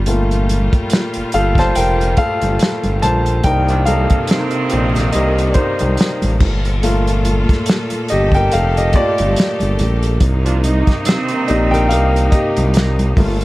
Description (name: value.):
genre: R&B, neo-soul.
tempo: 71 BPM.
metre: 4/4.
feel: swing 57% on 16ths.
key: C dorian.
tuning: A4 = 436 Hz.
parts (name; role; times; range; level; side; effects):
bright studio string section; sustained chords; 0.0-13.4 s; Bb2 to A4; -24 LUFS; equal; none.
smooth gliding synth bass; bass; 0.0-13.4 s; F1 to C2; -16 LUFS; equal; none.
warm grand piano; accompaniment; 0.1-13.4 s; A3 to A5; -18 LUFS; left 1 dB; none.
warm soul drum kit; drums; 0.1-13.4 s; crash cymbal, hi-hat, kick drum, snare drum; -17 LUFS; equal; none.
congas; percussion; 0.3-13.4 s; none; -26 LUFS; right 1 dB; none.
warm horn section; stabs; 3.7-12.3 s; G2 to F4; -21 LUFS; right 4 dB; none.
room: light reverb.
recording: vinyl crackle.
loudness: -13 LUFS.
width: side -18 dB against mid.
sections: 0.0-13.4 A section.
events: grand piano solo 0.0-13.4.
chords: 0.0 Gm9; 3.5 Cm7; 6.4 Gm9; 10.2 Cm7.